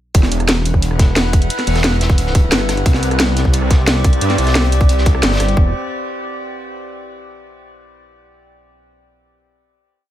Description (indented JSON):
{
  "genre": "dark technical drum and bass",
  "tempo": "177 BPM",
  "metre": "4/4",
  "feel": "straight",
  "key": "E minor",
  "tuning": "A4 = 439 Hz",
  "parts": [
    { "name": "metallic inharmonic drone", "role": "sustained chords", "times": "0.7-5.7 s", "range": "C4 to F#5", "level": "-23 LUFS", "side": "left 1 dB", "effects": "chorus, built-in reverb, sidechain pumping" },
    { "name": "wide detuned saw bass", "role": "bass", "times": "0.1-5.7 s", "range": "E1 to G2", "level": "-16 LUFS", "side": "equal", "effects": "chorus" },
    { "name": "crunchy breakbeat drum kit", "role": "drums", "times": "0.1-5.5 s", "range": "hi-hat, snare drum", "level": "-27 LUFS", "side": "equal", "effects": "high-pass filter on hats, studio reverb, high-pass filter on snare, high-pass filter on room" },
    { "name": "drum and bass drum kit", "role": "drums", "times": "0.1-5.6 s", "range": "hi-hat, rim click, snare drum", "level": "-18 LUFS", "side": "equal", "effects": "studio reverb" },
    { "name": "electronic kick drum", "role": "drums", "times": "0.1-5.6 s", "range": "none", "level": "-12 LUFS", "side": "equal", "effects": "studio reverb" }
  ],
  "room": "studio reverb",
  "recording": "none",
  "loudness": "-12 LUFS",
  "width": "side -12 dB against mid",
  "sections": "0.1-5.6 drop; 5.6-6.9 final chord",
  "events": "drop 0.1-5.6",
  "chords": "0.1 Em; 2.9 C5; 5.6 E5"
}